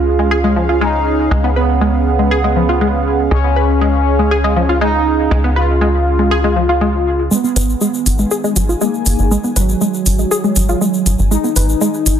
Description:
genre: melodic techno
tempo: 120 BPM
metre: 4/4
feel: straight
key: G# dorian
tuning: A4 = 441 Hz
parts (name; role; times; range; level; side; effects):
- analog synth brass; melody; 0.0-12.2 s; F#3 to E#4; -18 LUFS; right 1 dB; chorus, dub echo
- sweeping resonant pad; sustained chords; 0.0-12.2 s; C#4 to G#5; -23 LUFS; right 3 dB; chorus
- tight sequencer bass; bass; 0.0-12.2 s; G#1 to C#2; -16 LUFS; equal; none
- tight sequenced synth; arpeggios; 0.2-11.9 s; E#3 to B4; -17 LUFS; left 1 dB; chorus, dub echo
- egg shaker; percussion; 7.3-12.2 s; none; -24 LUFS; left 2 dB; none
- electronic hi-hat; drums; 7.6-12.2 s; none; -19 LUFS; right 2 dB; none
room: light reverb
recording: dense, heavily limited modern master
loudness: -12 LUFS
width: side -9 dB against mid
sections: 0.0-7.3 A section; 7.3-12.2 B section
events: build-up 7.3-12.2; filter sweep on analog polysynth 7.3-12.2; filter sweep on analog synth pad 7.3-12.2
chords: 0.0 C#; 7.3 G#m

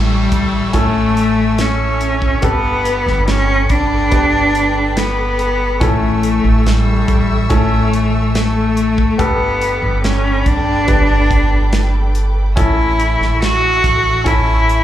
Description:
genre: pop ballad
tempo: 71 BPM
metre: 4/4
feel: straight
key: A mixolydian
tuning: A4 = 440 Hz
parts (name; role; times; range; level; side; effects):
- rich cello; melody; 0.0-14.8 s; G3 to F#4; -16 LUFS; left 1 dB; slapback echo
- clear baby grand piano; accompaniment; 0.0-14.8 s; G2 to B4; -22 LUFS; left 1 dB; slapback echo
- warm studio string section; sustained chords; 0.0-14.8 s; A4 to E6; -26 LUFS; left 1 dB; none
- upright bass; bass; 0.0-14.8 s; G1 to A1; -17 LUFS; right 1 dB; none
- downlifter; sound effects; 0.0-5.8 s; none; -33 LUFS; right 1 dB; none
- modern studio drum kit; drums; 0.3-14.8 s; hi-hat, kick drum, snare drum; -19 LUFS; right 1 dB; none
room: light reverb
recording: live gig heard through the venue's PA, club reverb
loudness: -12 LUFS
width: side -12 dB against mid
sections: 0.0-14.8 A section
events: none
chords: 0.0 A; 2.4 Gadd9; 5.8 A; 9.2 Gadd9; 12.6 A

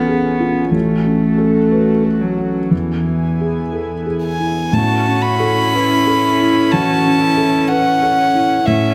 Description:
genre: neoclassical piano and strings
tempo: 61 BPM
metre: 4/4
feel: rubato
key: A major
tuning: A4 = 440 Hz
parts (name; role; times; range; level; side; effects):
- warm cello; second line; 0.0-8.9 s; E3 to F#4; -22 LUFS; equal; none
- felt-muted upright piano; accompaniment; 0.0-8.9 s; A1 to B4; -20 LUFS; equal; none
- airy breathy pad; sustained chords; 0.0-8.9 s; B3 to G#5; -26 LUFS; equal; chorus
- warm violin; melody; 4.2-8.9 s; E5 to B5; -19 LUFS; equal; slapback echo
- warm viola; accompaniment; 4.7-8.9 s; C#4; -22 LUFS; equal; none
room: light reverb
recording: close, detailed microphones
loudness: -15 LUFS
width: mono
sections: 0.0-4.7 A section; 4.7-8.9 A section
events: none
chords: 0.0 C#/A; 0.7 F#m/A; 2.7 E; 4.7 A

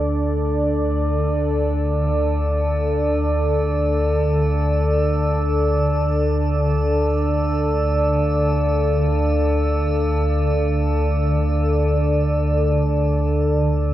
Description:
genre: dark ambient drone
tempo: free time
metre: none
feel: none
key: unclear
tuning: A4 = 440 Hz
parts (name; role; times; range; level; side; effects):
- deep dark ambient pad; sustained chords; 0.0-13.9 s; D4 to D5; -21 LUFS; equal; chorus, built-in reverb
- deep rumbling drone; drone; 0.0-13.9 s; D2 to D3; -20 LUFS; equal; built-in reverb, phaser
- metallic inharmonic drone; texture; 1.2-13.9 s; A4; -27 LUFS; equal; chorus, built-in reverb
room: wet cathedral reverb, RT60 5.9 s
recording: worn, warbling old tape, cassette tape, warbly pitch drift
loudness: -17 LUFS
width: side -13 dB against mid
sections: 0.0-13.9 A section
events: fade-in on synth drone 0.0-13.9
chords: 0.0 D5

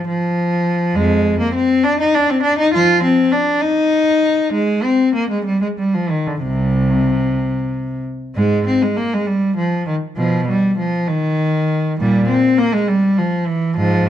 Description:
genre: classical, baroque-style suite movement for unaccompanied cello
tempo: 66 BPM (dotted quarters)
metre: 6/8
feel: rubato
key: C minor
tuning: A4 = 439 Hz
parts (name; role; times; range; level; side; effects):
- rich cello; solo; 0.0-14.1 s; C2 to F4; -14 LUFS; equal; none
room: moderate large studio reverb, RT60 1.3 s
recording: dark, warm production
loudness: -14 LUFS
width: side -10 dB against mid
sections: 0.0-8.4 A section; 8.4-14.1 A section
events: none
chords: none

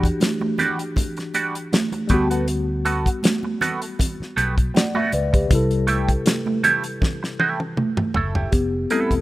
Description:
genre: lush 1970s-style soul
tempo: 79 BPM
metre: 4/4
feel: swing 54% on 16ths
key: G major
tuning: A4 = 445 Hz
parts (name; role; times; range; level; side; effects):
- mellow tine electric piano; accompaniment; 0.0-9.2 s; C3 to F#5; -25 LUFS; left 2 dB; medium stereo tremolo
- twelve-string electric guitar; riff; 0.0-9.1 s; G3 to A4; -22 LUFS; right 4 dB; wah
- fingered electric bass; bass; 0.0-9.2 s; E1 to D2; -24 LUFS; equal; none
- damped 70s drum kit; drums; 0.0-9.2 s; hi-hat, kick drum, snare drum, toms; -21 LUFS; equal; none
- congas; percussion; 0.2-9.1 s; none; -27 LUFS; right 4 dB; none
room: small room ambience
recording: rough home demo mix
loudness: -19 LUFS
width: side -17 dB against mid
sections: 0.0-8.5 A section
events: drum fill 7.0-8.5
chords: 0.0 Em9; 2.1 Gmaj9/D; 5.5 C6; 8.5 Fmaj9#11

